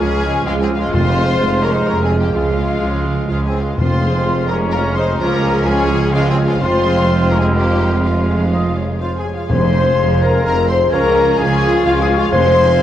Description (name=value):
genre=cinematic, heroic adventure film score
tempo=127 BPM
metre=3/4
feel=straight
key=F minor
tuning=A4 = 441 Hz
part: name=warm symphonic violin section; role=melody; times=0.0-12.8 s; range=F5 to C6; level=-28 LUFS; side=left 4 dB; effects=none
part: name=clear clarinet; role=second line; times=0.0-12.8 s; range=Ab3 to F5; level=-26 LUFS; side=left 1 dB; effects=none
part: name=clear symphonic violin section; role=second line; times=0.0-12.8 s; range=F4 to C6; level=-25 LUFS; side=left 3 dB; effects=none
part: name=flute section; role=second line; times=0.0-12.8 s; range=F5 to Db6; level=-28 LUFS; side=left 2 dB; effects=none
part: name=mellow cor anglais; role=second line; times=0.0-12.8 s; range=C5 to Ab5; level=-28 LUFS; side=left 1 dB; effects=none
part: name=rich symphonic viola section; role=accompaniment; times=0.0-12.8 s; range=F3 to Ab4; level=-25 LUFS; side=equal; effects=none
part: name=dark trombone section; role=sustained chords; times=0.0-12.8 s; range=F3 to C4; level=-25 LUFS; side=right 2 dB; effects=none
part: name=mellow French horn section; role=sustained chords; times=0.0-12.8 s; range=F3 to C5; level=-21 LUFS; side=left 4 dB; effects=none
part: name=clear trumpet section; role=stabs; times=0.0-12.8 s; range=Ab3 to C5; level=-23 LUFS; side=equal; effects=none
part: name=clear symphonic cello section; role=bass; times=0.0-12.8 s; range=Db2 to F2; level=-22 LUFS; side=right 1 dB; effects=none
part: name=mellow tuba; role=bass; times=0.0-12.8 s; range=F1 to Db2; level=-22 LUFS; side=right 2 dB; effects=none
part: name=warm symphonic double bass section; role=bass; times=0.0-12.8 s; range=F1 to Db2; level=-21 LUFS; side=right 2 dB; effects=none
part: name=timpani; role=percussion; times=0.9-1.6, 3.8-4.5, 9.5-10.2, 12.3-12.8 s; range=F2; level=-20 LUFS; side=equal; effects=none
room=wet recital hall reverb, RT60 1.5 s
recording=worn, warbling old tape, cassette tape, warbly pitch drift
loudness=-13 LUFS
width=side -11 dB against mid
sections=0.0-9.5 A section; 9.5-12.8 B section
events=none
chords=0.0 Db; 0.9 Fm; 2.3 Db; 3.8 Fm; 5.2 Db; 6.6 Fm; 10.9 Db